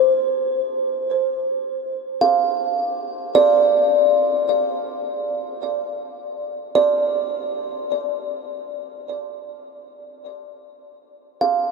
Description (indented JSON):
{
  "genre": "ambient",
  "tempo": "53 BPM",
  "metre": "3/4",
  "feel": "straight",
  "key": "unclear",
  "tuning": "A4 = 440 Hz",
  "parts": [
    { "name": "kalimba", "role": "solo", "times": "0.0-11.7 s", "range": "C5 to F5", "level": "-19 LUFS", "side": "right 1 dB", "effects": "ping-pong delay" }
  ],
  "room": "wet huge ambient reverb, RT60 7.9 s",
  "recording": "dark, warm production",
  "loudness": "-18 LUFS",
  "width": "side -4 dB against mid",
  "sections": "0.0-10.3 A section; 10.3-11.7 B section",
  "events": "none",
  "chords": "0.0 Csus4 (rootless); 10.3 N.C."
}